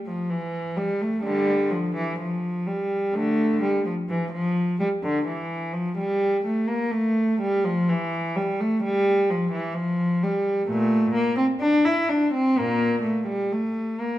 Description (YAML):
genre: classical, baroque-style suite movement for unaccompanied cello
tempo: 63 BPM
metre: 4/4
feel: rubato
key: unclear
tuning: A4 = 445 Hz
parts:
  - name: rich cello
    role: solo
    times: 0.1-14.2 s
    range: Bb2 to E4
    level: -22 LUFS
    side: equal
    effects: none
room: wet recital hall reverb, RT60 1.5 s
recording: minimal, uncompressed stereo recording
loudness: -21 LUFS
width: side -14 dB against mid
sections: 0.0-14.2 A section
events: none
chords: none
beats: 0.27 | 1.24 2.19 3.13 4.08 | 5.02 5.96 6.92 7.88 | 8.82 9.75 10.68 11.61 | 12.56 13.51